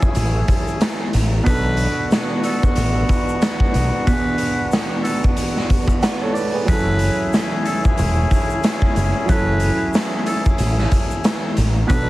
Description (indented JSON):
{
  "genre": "hip hop, boom-bap hip-hop",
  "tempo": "92 BPM",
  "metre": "4/4",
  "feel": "swing 56% on 16ths",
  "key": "F# minor",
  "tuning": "A4 = 440 Hz",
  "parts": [
    { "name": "warm upright piano", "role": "accompaniment", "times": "0.0-12.1 s", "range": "B2 to F#5", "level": "-25 LUFS", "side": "right 3 dB", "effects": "cassette tape, high-pass filter, low-pass filter" },
    { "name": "warm horn section", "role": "stabs", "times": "0.0-12.1 s", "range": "B3 to G#4", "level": "-26 LUFS", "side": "left 2 dB", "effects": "high-pass filter, low-pass filter, tape echo" },
    { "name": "raw garage drum kit", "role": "drums", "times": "0.0-12.1 s", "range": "hi-hat, kick drum, snare drum", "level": "-19 LUFS", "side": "equal", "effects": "none" },
    { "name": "egg shaker", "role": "percussion", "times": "0.0-12.1 s", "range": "none", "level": "-40 LUFS", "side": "left 7 dB", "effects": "none" },
    { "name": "fretless electric bass", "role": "bass", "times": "0.2-12.1 s", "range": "E1 to B1", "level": "-18 LUFS", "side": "equal", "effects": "none" },
    { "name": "trumpet with metal mute", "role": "melody", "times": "1.5-12.1 s", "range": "A4 to B4", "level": "-27 LUFS", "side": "equal", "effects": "high-pass filter, low-pass filter, tape echo" }
  ],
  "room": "light reverb",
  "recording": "heavily compressed radio sound, multiband compression, vinyl crackle",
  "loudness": "-16 LUFS",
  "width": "side -17 dB against mid",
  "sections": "0.0-12.1 A section",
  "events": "none",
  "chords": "0.0 F#m7; 1.5 Bm7; 6.7 F#m7",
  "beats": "0.16 0.81 | 1.46 2.12 2.77 3.42 | 4.07 4.72 5.38 6.03 | 6.68 7.33 7.99 8.64 | 9.29 9.94 10.59 11.24 | 11.90"
}